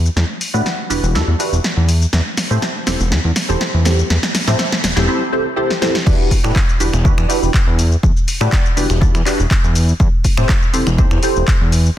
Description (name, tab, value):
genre	filtered disco house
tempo	122 BPM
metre	4/4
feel	swing 53% on 16ths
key	E minor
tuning	A4 = 440 Hz
part	fat analog bass	bass	0.0-11.9 s	E1 to A2	-15 LUFS	equal	tube saturation, sidechain pumping, low-pass filter
part	punchy analog drum machine	drums	0.1-11.9 s	crash cymbal, finger snaps, handclaps, hi-hat, shaker, snare drum	-20 LUFS	equal	sidechain pumping on perc, sidechain pumping on hats, sidechain pumping on cymbals
part	funky polysynth comp	accompaniment	0.5-11.5 s	C4 to C5	-20 LUFS	right 1 dB	chorus, phaser, sidechain pumping, low-pass filter
part	electronic kick drum	drums	6.1-11.6 s	none	-14 LUFS	equal	none
room	light reverb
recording	dense, heavily limited modern master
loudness	-13 LUFS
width	side -12 dB against mid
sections	0.0-6.1 A section; 6.1-12.0 B section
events	build-up 0.0-6.1; drum fill 0.0-5.1, 5.7-6.1; filter sweep 0.0-6.1; drop 6.1-12.0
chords	0.0 Em9; 2.1 C6/E; 6.1 Em9; 10.0 C6